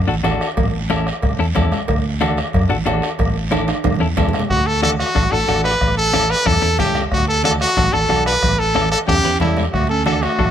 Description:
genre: latin, cumbia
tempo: 183 BPM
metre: 4/4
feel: straight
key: D major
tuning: A4 = 440 Hz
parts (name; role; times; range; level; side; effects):
- fingered electric bass; bass; 0.0-10.5 s; A1 to F#2; -21 LUFS; right 1 dB; none
- clean electric guitar; accompaniment; 0.1-10.4 s; C#4 to B4; -23 LUFS; left 4 dB; none
- congas; percussion; 0.1-10.2 s; none; -26 LUFS; right 4 dB; none
- bombo; percussion; 0.2-10.5 s; none; -22 LUFS; left 1 dB; none
- cowbell and timbales; percussion; 0.2-4.4 s; none; -27 LUFS; right 8 dB; none
- guiro; percussion; 0.2-10.5 s; none; -32 LUFS; right 6 dB; none
- brilliant trumpet; melody; 4.5-10.5 s; E4 to B4; -17 LUFS; equal; none
- breathy clarinet; second line; 9.1-10.5 s; G3 to D4; -25 LUFS; right 4 dB; none
room: light reverb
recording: minimal, uncompressed stereo recording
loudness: -15 LUFS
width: side -9 dB against mid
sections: 0.0-4.5 A section; 4.5-10.5 B section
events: drum fill 3.5-4.5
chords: 0.0 D; 0.6 A; 1.9 D; 3.2 A; 4.5 D; 5.8 A; 7.1 D; 8.4 A7; 9.7 D

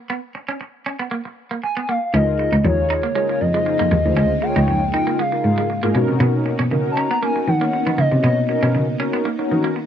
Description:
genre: funk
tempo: 118 BPM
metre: 4/4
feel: straight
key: unclear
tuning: A4 = 440 Hz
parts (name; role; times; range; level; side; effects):
- semi-hollow electric guitar; riff; 0.1-9.8 s; Ab3 to Eb4; -26 LUFS; right 4 dB; analog chorus
- gliding portamento lead; melody; 1.6-9.0 s; Db5 to A#5; -21 LUFS; left 1 dB; chorus, slapback echo
- mellow synth brass; accompaniment; 2.1-9.8 s; Db4 to Db5; -24 LUFS; left 1 dB; chorus
- soft string machine; sustained chords; 2.1-9.9 s; Db3 to F4; -27 LUFS; equal; ensemble chorus
- warm cello; bass; 2.1-9.7 s; Db2 to D#3; -19 LUFS; equal; none
room: little or no reverb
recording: dry, close 1970s-style studio recording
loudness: -17 LUFS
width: side -9 dB against mid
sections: 0.0-2.1 A section; 2.1-9.9 B section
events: none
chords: 0.0 Abmadd9 (rootless); 2.1 Db69; 6.0 Bmaj7

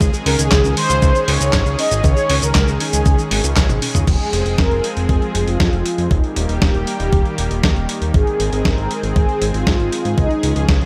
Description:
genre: italo disco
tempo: 118 BPM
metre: 4/4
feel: straight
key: F minor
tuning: A4 = 440 Hz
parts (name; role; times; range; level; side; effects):
- lush unison pad; sustained chords; 0.0-10.9 s; Eb3 to Ab4; -27 LUFS; equal; chorus
- soft round pluck; arpeggios; 0.0-4.0 s; Eb3 to Ab4; -31 LUFS; equal; none
- fat analog bass; bass; 0.0-10.9 s; Eb1 to Ab2; -22 LUFS; equal; none
- dusty soul sampler-style drum kit; drums; 0.0-10.9 s; cabasa, crash cymbal, handclaps, hi-hat, snare drum, toms; -24 LUFS; equal; overdrive
- electronic kick drum; drums; 0.0-10.8 s; none; -18 LUFS; equal; overdrive
- mellow synth brass; melody; 0.3-10.9 s; Eb4 to Eb5; -24 LUFS; equal; chorus, digital delay
room: little or no reverb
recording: none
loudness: -17 LUFS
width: mono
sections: 0.0-4.1 A section; 4.1-10.9 B section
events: drum fill 3.6-4.1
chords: 0.0 Dbsus2; 4.1 Fm; 6.1 Eb; 8.1 Ab; 10.2 Db

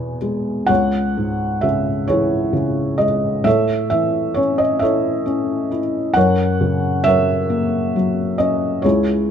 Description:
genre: classical, lyrical solo piano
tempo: 44 BPM (dotted quarters)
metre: 6/8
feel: rubato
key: C# minor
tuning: A4 = 440 Hz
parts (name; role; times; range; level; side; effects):
- felt-muted upright piano; solo; 0.0-9.3 s; C#2 to G#5; -16 LUFS; equal; none
room: light reverb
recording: close, detailed microphones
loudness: -16 LUFS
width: side -8 dB against mid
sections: 0.7-9.3 A section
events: none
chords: 0.0 E; 0.7 C#m; 3.5 A; 6.2 F#

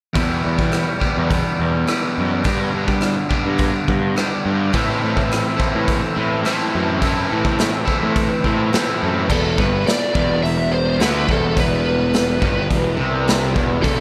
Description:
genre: indie rock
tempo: 105 BPM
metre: 4/4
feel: straight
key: E minor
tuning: A4 = 440 Hz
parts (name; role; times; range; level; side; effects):
- crunchy overdriven guitar; riff; 0.1-14.0 s; E2 to A4; -24 LUFS; equal; tape echo
- fuzz picked electric bass; bass; 0.2-14.0 s; E1 to G3; -25 LUFS; equal; overdrive
- raw garage drum kit; drums; 0.2-14.0 s; crash cymbal, hi-hat, kick drum, rim click, snare drum; -25 LUFS; equal; none
- raw garage guitar; riff; 4.7-14.0 s; E3 to E4; -26 LUFS; equal; overdrive, ensemble chorus, tape echo
- biting lead guitar; melody; 9.3-14.0 s; A4 to E5; -25 LUFS; equal; overdrive, tape echo
room: light reverb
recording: echo-heavy mix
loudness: -19 LUFS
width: mono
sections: 0.1-9.3 A section; 9.3-14.0 B section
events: none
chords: 0.1 Em; 2.4 G; 4.7 Am; 9.3 Em

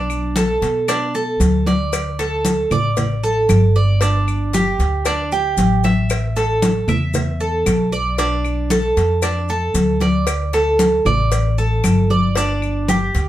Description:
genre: latin, Cuban son and guajira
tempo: 115 BPM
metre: 4/4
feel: straight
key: unclear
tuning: A4 = 440 Hz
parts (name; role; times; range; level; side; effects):
- Cuban tres; arpeggios; 0.0-13.3 s; D4 to E5; -19 LUFS; right 2 dB; none
- upright bass; bass; 0.0-13.3 s; G1 to B2; -19 LUFS; equal; none
- claves; percussion; 0.1-12.9 s; none; -30 LUFS; left 4 dB; none
- congas; percussion; 0.1-13.3 s; none; -20 LUFS; left 2 dB; none
- maracas; percussion; 0.1-13.3 s; none; -32 LUFS; left 6 dB; none
- cowbell; percussion; 0.4-13.3 s; none; -28 LUFS; left 3 dB; none
room: wet studio ambience, RT60 0.5 s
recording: heard from further back in the room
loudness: -15 LUFS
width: side -13 dB against mid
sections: 0.0-13.3 A section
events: none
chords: 0.0 Bm7; 1.9 D5; 4.0 G5; 6.1 A5; 8.2 Bm7b5; 10.3 D5; 12.4 G5

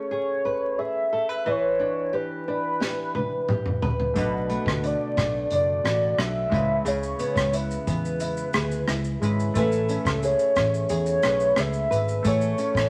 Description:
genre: indie pop, bedroom pop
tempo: 89 BPM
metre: 4/4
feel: straight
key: A major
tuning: A4 = 440 Hz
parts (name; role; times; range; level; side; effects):
- warm velvety synth lead; melody; 0.0-12.9 s; A4 to E5; -28 LUFS; equal; chorus
- nylon-string guitar; accompaniment; 0.0-12.9 s; B2 to B4; -31 LUFS; equal; warbly pitch drift
- unplugged drum kit; drums; 2.8-12.9 s; hi-hat, kick drum, rim click, shaker, snare drum, toms; -31 LUFS; equal; none
- chorused retro synth keys; accompaniment; 4.1-12.9 s; G#3 to G#5; -35 LUFS; equal; none
- vintage muted picked electric bass; bass; 4.2-12.9 s; F#1 to E2; -31 LUFS; equal; none
room: moderate studio reverb, RT60 0.9 s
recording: vinyl crackle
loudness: -25 LUFS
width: mono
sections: 0.0-12.9 A section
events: drum fill 2.8-4.2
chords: 0.0 Amaj9; 1.5 Em7; 4.2 Bm7; 6.5 C#m7; 9.6 Amaj9; 12.3 Amaj7

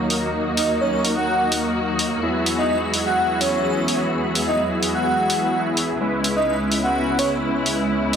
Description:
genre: EDM, festival progressive house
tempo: 127 BPM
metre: 4/4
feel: straight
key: unclear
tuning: A4 = 440 Hz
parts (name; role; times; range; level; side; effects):
- muted studio string section; sustained chords; 0.0-8.2 s; C#2 to F#4; -26 LUFS; left 1 dB; none
- supersaw chords; riff; 0.0-8.2 s; F#3 to E5; -23 LUFS; equal; wide subtle chorus, low-pass filter, digital delay
- electronic hi-hat; drums; 0.1-8.2 s; none; -24 LUFS; equal; overdrive
- airy dreamy lead; melody; 0.6-8.2 s; C#5 to F#5; -23 LUFS; right 1 dB; chorus, digital delay
room: moderate recital hall reverb, RT60 1.3 s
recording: none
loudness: -18 LUFS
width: side -7 dB against mid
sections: 0.0-8.2 A section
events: none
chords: 0.0 D#m; 2.2 Eadd9; 6.0 C#m7

